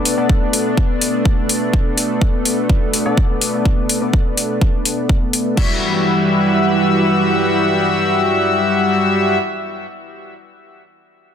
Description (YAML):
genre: melodic techno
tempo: 125 BPM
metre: 4/4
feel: straight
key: E minor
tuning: A4 = 440 Hz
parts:
  - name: lush unison pad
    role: sustained chords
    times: 0.0-9.4 s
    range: E3 to B4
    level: -20 LUFS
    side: right 1 dB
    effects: chorus, sidechain pumping
  - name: sync-sweep polysynth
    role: stabs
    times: 0.0-9.4 s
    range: G3 to E5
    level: -18 LUFS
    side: left 2 dB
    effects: chorus, sidechain pumping, tape echo
  - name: warbly tape-like pad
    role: texture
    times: 0.1-9.5 s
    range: B3 to F#5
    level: -31 LUFS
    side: equal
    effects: none
  - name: deep house drum kit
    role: drums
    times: 0.1-5.7 s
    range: crash cymbal, hi-hat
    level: -20 LUFS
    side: left 2 dB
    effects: overdrive
  - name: electronic kick drum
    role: drums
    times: 0.3-5.7 s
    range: none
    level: -16 LUFS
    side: equal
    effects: none
room: light reverb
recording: dense, heavily limited modern master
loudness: -14 LUFS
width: side -8 dB against mid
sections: 0.0-5.6 A section; 5.6-9.4 B section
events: filter sweep on analog polysynth 0.0-5.6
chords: 0.0 Bm7; 5.6 Emadd9